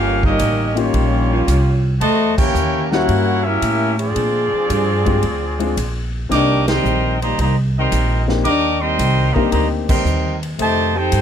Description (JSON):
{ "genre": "jazz, big band swing", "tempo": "112 BPM", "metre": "4/4", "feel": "swing 69% on 8ths", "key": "unclear", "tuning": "A4 = 440 Hz", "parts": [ { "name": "clear trumpet section", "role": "melody", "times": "0.0-11.2 s", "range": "Bb3 to D6", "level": "-20 LUFS", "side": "equal", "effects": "none" }, { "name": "mellow trombone section", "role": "second line", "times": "0.0-11.2 s", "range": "C3 to Ab4", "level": "-21 LUFS", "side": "left 1 dB", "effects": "none" }, { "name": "upright bass", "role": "bass", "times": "0.0-11.2 s", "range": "G1 to Bb2", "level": "-19 LUFS", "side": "right 1 dB", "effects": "none" }, { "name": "mellow saxophone section", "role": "sustained chords", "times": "0.2-9.5 s", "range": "Db3 to Bb4", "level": "-26 LUFS", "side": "equal", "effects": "none" }, { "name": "swinging big-band drum kit", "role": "drums", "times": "0.2-11.2 s", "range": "crash cymbal, hi-hat, kick drum, ride cymbal, snare drum", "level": "-25 LUFS", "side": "equal", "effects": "none" }, { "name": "warm baby grand piano", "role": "accompaniment", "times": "0.8-10.0 s", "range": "G3 to Ab4", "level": "-22 LUFS", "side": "left 6 dB", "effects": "none" } ], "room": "little or no reverb", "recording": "close, detailed microphones", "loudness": "-15 LUFS", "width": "side -8 dB against mid", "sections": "0.0-11.2 A section", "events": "band accent 2.3, 6.6, 9.8", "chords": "0.0 Eb13; 2.0 Edim7; 4.2 Bb13; 6.3 Cm7; 10.6 F9", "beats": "0.40 0.94 1.47 | 2.01 2.54 3.08 3.62 | 4.16 4.69 5.23 5.76 | 6.30 6.84 7.37 7.91 | 8.45 8.98 9.52 10.05 | 10.59 11.12" }